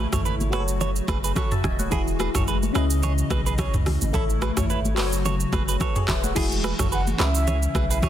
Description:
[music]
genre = afrobeats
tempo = 108 BPM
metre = 4/4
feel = swing 55% on 16ths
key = E major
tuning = A4 = 441 Hz
[part]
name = barking FM electric piano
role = accompaniment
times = 0.0-8.1 s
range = C#3 to B5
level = -29 LUFS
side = left 2 dB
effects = phaser
[part]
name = hollow soft pad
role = sustained chords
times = 0.0-8.1 s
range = C#3 to D#5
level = -33 LUFS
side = left 1 dB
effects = ensemble chorus
[part]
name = direct-recorded clean electric guitar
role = riff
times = 0.0-8.1 s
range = E4 to C#5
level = -31 LUFS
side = right 7 dB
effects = phaser, ping-pong delay
[part]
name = punchy sub bass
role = bass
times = 0.0-8.1 s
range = D#1 to C#2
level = -25 LUFS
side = equal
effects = none
[part]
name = afro-pop drum kit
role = drums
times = 0.1-8.1 s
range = crash cymbal, handclaps, hi-hat, kick drum, rim click, shaker, toms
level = -25 LUFS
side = equal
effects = soft clipping on snare
[part]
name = congas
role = percussion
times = 0.4-8.1 s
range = none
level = -32 LUFS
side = left 1 dB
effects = none
[part]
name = warm velvety synth lead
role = melody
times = 6.9-8.1 s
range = E5 to F#5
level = -29 LUFS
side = right 1 dB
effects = chorus, ping-pong delay
[sound]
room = little or no reverb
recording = dense, heavily limited modern master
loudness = -21 LUFS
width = side -11 dB against mid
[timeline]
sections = 0.0-6.4 A section; 6.4-8.1 B section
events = none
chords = 0.0 A; 0.5 F#m; 1.9 Eadd9; 2.8 C#madd9; 4.1 A; 5.0 F#m; 6.4 Eadd9; 7.2 C#m

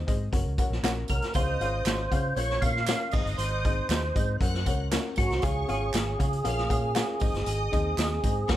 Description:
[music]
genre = uptempo 1960s-style soul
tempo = 118 BPM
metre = 4/4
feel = straight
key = unclear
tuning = A4 = 437 Hz
[part]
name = vintage muted fingered electric bass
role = bass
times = 0.0-8.6 s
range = Gb1 to Db3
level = -30 LUFS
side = equal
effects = none
[part]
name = dark upright piano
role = accompaniment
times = 0.1-8.6 s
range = Ab2 to Gb5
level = -34 LUFS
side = left 6 dB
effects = plate reverb
[part]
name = raw garage drum kit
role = drums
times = 0.1-8.6 s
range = crash cymbal, hi-hat, kick drum, snare drum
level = -28 LUFS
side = equal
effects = none
[part]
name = tambourine and handclaps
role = percussion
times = 0.1-8.4 s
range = none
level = -39 LUFS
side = right 10 dB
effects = none
[part]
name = percussive tonewheel organ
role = melody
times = 1.1-8.6 s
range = Gb4 to F5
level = -31 LUFS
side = right 2 dB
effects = chorus vibrato, slow rotary speaker, plate reverb, analog delay
[part]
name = vibraphone with medium hard mallets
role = second line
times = 1.1-8.4 s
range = Gb5 to F6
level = -40 LUFS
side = right 3 dB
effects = plate reverb
[part]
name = warm studio string section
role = second line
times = 1.3-8.6 s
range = Eb4 to Gb6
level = -38 LUFS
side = right 2 dB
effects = plate reverb
[sound]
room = light reverb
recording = none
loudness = -25 LUFS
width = side -13 dB against mid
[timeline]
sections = 0.0-8.6 A section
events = none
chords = 0.3 Gb; 1.4 Db; 2.4 Bbm; 3.1 Ab; 4.4 Gb; 5.4 Db; 6.5 Bbm; 7.2 Ab

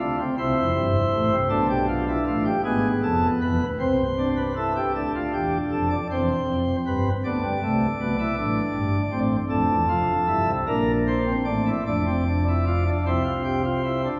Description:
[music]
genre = classical, baroque-style 3-part fugue for pipe organ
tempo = 52 BPM (dotted quarters)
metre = 6/8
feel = straight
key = F major from 9.5 s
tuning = A4 = 440 Hz
[part]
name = pipe organ, sparkling flutes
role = solo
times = 0.0-14.2 s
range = C1 to D5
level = -23 LUFS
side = equal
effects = none
[sound]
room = wet concert hall reverb, RT60 2.1 s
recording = heard from further back in the room, small room reverb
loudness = -23 LUFS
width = mono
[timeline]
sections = 0.0-4.9 A section; 4.9-14.2 B section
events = none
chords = 0.4 Am; 1.5 Bdim; 2.6 E7; 3.8 Am/C; 4.9 Dm; 6.1 C/E; 7.2 Am11; 8.4 Am; 9.5 Dm; 10.7 Bbmaj9#11; 11.9 F5; 13.1 C

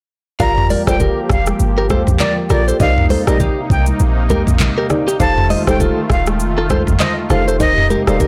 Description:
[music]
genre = afrobeats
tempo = 100 BPM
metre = 4/4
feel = swing 58% on 16ths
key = C dorian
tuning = A4 = 440 Hz
[part]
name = breathy bright jazz flute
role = melody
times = 0.4-8.2 s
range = D5 to Bb5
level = -23 LUFS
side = equal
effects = tape echo
[part]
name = folk marimba with medium mallets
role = accompaniment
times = 0.4-8.3 s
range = Eb4 to Eb5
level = -24 LUFS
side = equal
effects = none
[part]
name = warm analog pad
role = sustained chords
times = 0.4-8.3 s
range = C3 to G4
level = -25 LUFS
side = equal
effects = chorus, tremolo
[part]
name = direct-recorded clean electric guitar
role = riff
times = 0.4-8.3 s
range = Eb4 to F5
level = -22 LUFS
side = equal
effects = none
[part]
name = clean 808-style bass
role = bass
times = 0.4-8.3 s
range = Eb1 to C2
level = -19 LUFS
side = equal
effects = none
[part]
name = afro-pop drum kit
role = drums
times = 0.4-8.3 s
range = handclaps, hi-hat, kick drum, rim click, shaker, toms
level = -21 LUFS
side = equal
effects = none
[part]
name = congas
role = percussion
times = 0.4-8.3 s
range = none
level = -26 LUFS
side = equal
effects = none
[sound]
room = light reverb, digital ambience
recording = blown-out, overdriven recording, overdrive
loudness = -15 LUFS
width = mono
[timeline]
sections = 0.4-8.3 A section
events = none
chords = 0.4 Gm7; 2.8 Cm7; 5.2 F7; 7.6 Cm7/Eb

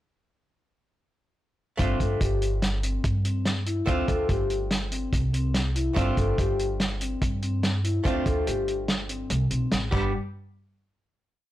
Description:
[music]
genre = progressive instrumental, band music in an uneven meter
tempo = 144 BPM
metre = 5/4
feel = straight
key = unclear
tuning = A4 = 440 Hz
[part]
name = archtop guitar, miked and amplified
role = accompaniment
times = 1.8-10.1 s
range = G3 to G4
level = -32 LUFS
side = right 3 dB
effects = none
[part]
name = vibraphone with soft mallets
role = arpeggios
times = 1.8-10.1 s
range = G3 to A4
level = -31 LUFS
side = left 4 dB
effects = none
[part]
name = upright bass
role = bass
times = 1.8-10.1 s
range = G1 to G2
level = -27 LUFS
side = equal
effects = none
[part]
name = warm soul drum kit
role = drums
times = 1.8-10.0 s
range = crash cymbal, hi-hat, kick drum, snare drum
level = -27 LUFS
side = equal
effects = none
[sound]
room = light reverb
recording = blown-out, overdriven recording, overdrive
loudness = -24 LUFS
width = side -14 dB against mid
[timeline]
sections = 1.8-10.1 A section; 10.1-11.5 final hit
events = none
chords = 1.8 G7sus4; 9.9 G; 10.1 N.C.

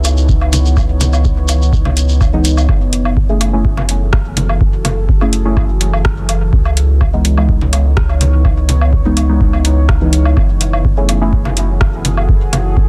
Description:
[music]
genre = dub techno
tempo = 125 BPM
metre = 4/4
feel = straight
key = F# minor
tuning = A4 = 441 Hz
[part]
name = deep dark ambient pad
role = sustained chords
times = 0.0-12.9 s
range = E3 to C#5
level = -26 LUFS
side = equal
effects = chorus, built-in reverb, sidechain pumping
[part]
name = warm sub bass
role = bass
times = 0.0-12.9 s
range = F#1 to C#2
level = -16 LUFS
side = equal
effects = sidechain pumping
[part]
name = booming analog drum machine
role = drums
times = 0.0-12.6 s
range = hi-hat, rim click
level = -22 LUFS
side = equal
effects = soft clipping on snare
[part]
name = shekere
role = percussion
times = 0.0-2.7 s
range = none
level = -26 LUFS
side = equal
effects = none
[part]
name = woodblock and congas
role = percussion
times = 0.0-12.6 s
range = none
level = -24 LUFS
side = equal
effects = sidechain pumping on perc, dub echo
[part]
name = electronic kick drum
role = drums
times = 0.3-12.9 s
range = none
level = -17 LUFS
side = equal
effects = none
[part]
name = deep mellow chord stab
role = stabs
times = 2.3-11.3 s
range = E3 to G#4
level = -22 LUFS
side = equal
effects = chorus, phaser, sidechain pumping, dub echo
[sound]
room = little or no reverb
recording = dense, heavily limited modern master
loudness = -13 LUFS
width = mono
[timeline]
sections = 0.0-2.7 A section; 2.7-12.9 A section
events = none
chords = 0.0 C#m9; 2.7 F#m9; 6.5 C#m9; 10.4 F#m9

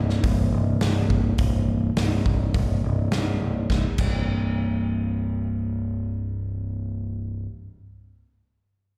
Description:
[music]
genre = quiet-loud alternative rock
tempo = 104 BPM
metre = 4/4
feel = straight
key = unclear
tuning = A4 = 440 Hz
[part]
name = overdriven picked electric bass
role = bass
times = 0.0-7.5 s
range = C1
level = -26 LUFS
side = equal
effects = none
[part]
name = big rock drum kit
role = drums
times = 0.1-4.1 s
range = crash cymbal, hi-hat, kick drum, snare drum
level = -28 LUFS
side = equal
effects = none
[sound]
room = little or no reverb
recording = live gig heard through the venue's PA, recital hall reverb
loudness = -24 LUFS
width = mono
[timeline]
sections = 0.0-3.7 A section; 3.7-6.0 B section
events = none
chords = none

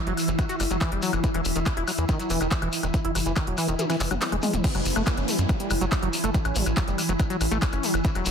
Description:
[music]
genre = psychedelic trance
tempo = 141 BPM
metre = 4/4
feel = straight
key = F# phrygian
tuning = A4 = 442 Hz
[part]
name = swarming drone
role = sustained chords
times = 0.0-8.3 s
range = E3 to E4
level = -29 LUFS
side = equal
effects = built-in reverb, sidechain pumping
[part]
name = liquid acid bass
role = riff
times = 0.0-8.3 s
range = D#3 to F#4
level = -30 LUFS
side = moving between left 5 dB and right 5 dB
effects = chorus, auto-pan, vintage 12-bit sampler grit, sidechain pumping, dub echo
[part]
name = tight sequencer bass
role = bass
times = 0.1-8.3 s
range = E1 to F#2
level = -28 LUFS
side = equal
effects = none
[part]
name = techno drum kit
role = drums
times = 0.1-8.3 s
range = crash cymbal, handclaps, hi-hat, snare drum, toms, woodblock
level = -30 LUFS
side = left 2 dB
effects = none
[part]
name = shekere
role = percussion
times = 0.2-8.3 s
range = none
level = -36 LUFS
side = left 3 dB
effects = none
[part]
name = electronic kick drum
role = drums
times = 0.4-8.1 s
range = none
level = -25 LUFS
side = equal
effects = none
[part]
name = downlifter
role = sound effects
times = 4.6-8.0 s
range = none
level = -35 LUFS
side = right 1 dB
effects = none
[sound]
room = light reverb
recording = dense, heavily limited modern master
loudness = -22 LUFS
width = side -7 dB against mid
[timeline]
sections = 0.0-4.6 A section; 4.6-8.3 B section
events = kick drops out 3.8-4.6; drum fill 3.8-4.6; drop 4.6-8.3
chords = 0.0 F#7(no3); 1.2 Esus2; 4.6 F#5

